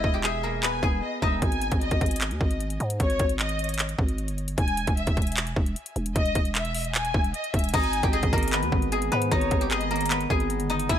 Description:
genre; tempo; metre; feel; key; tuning
hip hop, trap; 152 BPM; 4/4; half-time; G# harmonic minor; A4 = 440 Hz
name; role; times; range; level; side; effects
guzheng; melody; 0.0-3.9, 7.7-11.0 s; A#3 to G#5; -28 LUFS; left 2 dB; digital delay
warm studio violin section; second line; 0.0-11.0 s; C#5 to G#5; -31 LUFS; left 2 dB; digital delay
growling 808-style bass; bass; 0.0-11.0 s; D#1 to G#2; -29 LUFS; equal; none
trap drum kit; drums; 0.0-11.0 s; crash cymbal, handclaps, hi-hat, kick drum; -26 LUFS; equal; none
warbly tape-like pad; sustained chords; 8.1-11.0 s; D#3 to G#4; -33 LUFS; right 1 dB; chorus, built-in reverb
room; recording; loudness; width
digital ambience; none; -23 LUFS; side -10 dB against mid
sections
0.0-7.7 A section; 7.7-11.0 B section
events
break 0.0-1.4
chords
0.0 E; 1.4 G#5; 4.6 E; 7.7 G#m

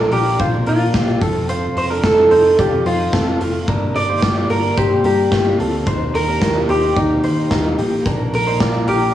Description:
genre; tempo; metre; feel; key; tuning
jangly indie pop; 110 BPM; 4/4; straight; Bb major; A4 = 440 Hz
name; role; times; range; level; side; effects
electric guitar through a small old amp; melody; 0.0-9.1 s; Eb4 to D5; -17 LUFS; equal; none
picked steel-string acoustic guitar; accompaniment; 0.0-9.1 s; G2 to Bb4; -24 LUFS; right 3 dB; cassette tape
direct-recorded clean electric guitar; arpeggios; 0.0-9.1 s; A3 to D5; -24 LUFS; left 1 dB; tremolo, cassette tape
vintage muted picked electric bass; bass; 0.0-9.1 s; F1 to Eb3; -23 LUFS; left 1 dB; none
big rock drum kit; drums; 0.1-9.0 s; hi-hat, kick drum, snare drum; -21 LUFS; equal; cassette tape
room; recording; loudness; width
light reverb, small room ambience; home recording on cassette, small room reverb; -14 LUFS; side -12 dB against mid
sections
0.0-9.1 A section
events
none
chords
0.0 Bb; 1.2 F; 3.7 Gm; 5.9 Eb; 8.1 Bb

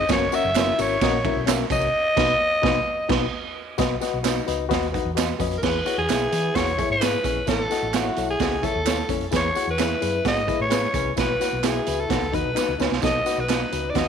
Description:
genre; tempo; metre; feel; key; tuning
uptempo 1960s-style soul; 130 BPM; 4/4; straight; E major; A4 = 440 Hz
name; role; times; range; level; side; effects
raspy alto saxophone; melody; 0.0-14.1 s; F#4 to E5; -24 LUFS; equal; tape echo
mellow reed electric piano; accompaniment; 0.0-14.1 s; C#4 to F#5; -27 LUFS; left 12 dB; fast tremolo
hollow-body short-scale fingered electric bass; bass; 0.0-14.1 s; F1 to E3; -30 LUFS; equal; none
raw garage drum kit; drums; 0.1-14.1 s; crash cymbal, hi-hat, kick drum, ride cymbal, snare drum; -25 LUFS; right 7 dB; none
tambourine and handclaps; percussion; 0.1-14.1 s; none; -35 LUFS; right 13 dB; none
vintage hollow-body jazz guitar; riff; 0.3-14.1 s; C#4 to F#4; -33 LUFS; left 11 dB; none
room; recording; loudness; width
light reverb, studio reverb; 1960s-style stereo with parts hard left and right; -20 LUFS; side -7 dB against mid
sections
0.0-3.8 A section; 3.8-5.6 B section; 5.6-14.1 C section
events
band accent 1.9-3.8; drum fill 12.6-13.0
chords
0.1 F#; 1.9 B; 5.6 E; 7.5 A; 9.3 E; 11.2 Bsus4; 12.1 B

